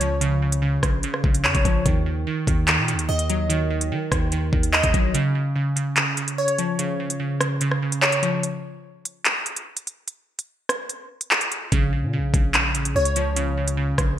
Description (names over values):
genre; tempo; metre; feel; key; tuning
hip hop, drill; 146 BPM; 4/4; half-time; Bb minor; A4 = 442 Hz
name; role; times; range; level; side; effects
glassy wavetable pluck; accompaniment; 0.0-8.4, 11.7-14.2 s; Db3 to Eb5; -23 LUFS; right 1 dB; chorus
long sustained 808-style bass; bass; 0.0-5.1, 11.7-14.2 s; A1 to Eb3; -25 LUFS; equal; none
drill drum kit; drums; 0.0-14.1 s; handclaps, hi-hat, kick drum, rim click; -21 LUFS; equal; vintage 12-bit sampler grit, gated reverb
room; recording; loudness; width
light reverb, digital ambience; bright 1980s-style digital production; -20 LUFS; side -11 dB against mid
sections
0.0-14.2 A section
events
break 5.1-11.7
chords
0.0 Bbm; 1.9 Ebm; 5.1 Db; 8.4 N.C.; 11.7 Bbm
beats
| 0.21 0.62 1.04 1.45 | 1.86 2.27 2.68 3.09 | 3.50 3.91 4.32 4.73 | 5.14 5.56 5.97 6.38 | 6.79 7.20 7.61 8.02 | 8.43 8.84 9.26 9.67 | 10.08 10.49 10.90 11.31 | 11.72 12.13 12.54 12.95 | 13.36 13.78 14.19